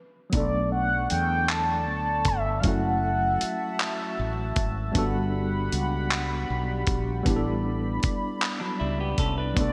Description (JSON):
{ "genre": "slow six-eight R&B", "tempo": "52 BPM (dotted quarters)", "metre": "6/8", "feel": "straight", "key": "B minor", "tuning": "A4 = 440 Hz", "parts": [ { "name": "mellow horn-like synth lead", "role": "melody", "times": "0.3-3.8, 9.6-9.7 s", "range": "D5 to A5", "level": "-29 LUFS", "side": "equal", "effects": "chorus, phaser, tape echo" }, { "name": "mellow tine electric piano", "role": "accompaniment", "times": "0.3-9.7 s", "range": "F#3 to A4", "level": "-33 LUFS", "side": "equal", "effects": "none" }, { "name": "chorused pulse-width pad", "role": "sustained chords", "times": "0.3-9.7 s", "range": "G3 to C#6", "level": "-36 LUFS", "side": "equal", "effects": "none" }, { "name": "mellow fretless electric bass", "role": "bass", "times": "0.3-9.7 s", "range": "F#1 to E2", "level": "-32 LUFS", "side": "equal", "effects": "none" }, { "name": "dusty soul sampler-style drum kit", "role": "drums", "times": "0.3-9.7 s", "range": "handclaps, hi-hat, kick drum", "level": "-31 LUFS", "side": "equal", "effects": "none" }, { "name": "clean electric guitar", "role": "second line", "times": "8.6-9.7 s", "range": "F#3 to B4", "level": "-34 LUFS", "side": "equal", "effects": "spring reverb, tape echo" } ], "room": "wet concert hall reverb, RT60 2.2 s", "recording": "big arena sound", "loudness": "-26 LUFS", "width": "mono", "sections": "0.3-9.7 A section", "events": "stop 0.0-0.3", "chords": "0.3 Bm9; 2.6 F#m7; 4.9 Gmaj7; 7.3 A9sus4", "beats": "| 0.33 1.49 | 2.64 3.79 | 4.95 6.10 | 7.26 8.41 | 9.56" }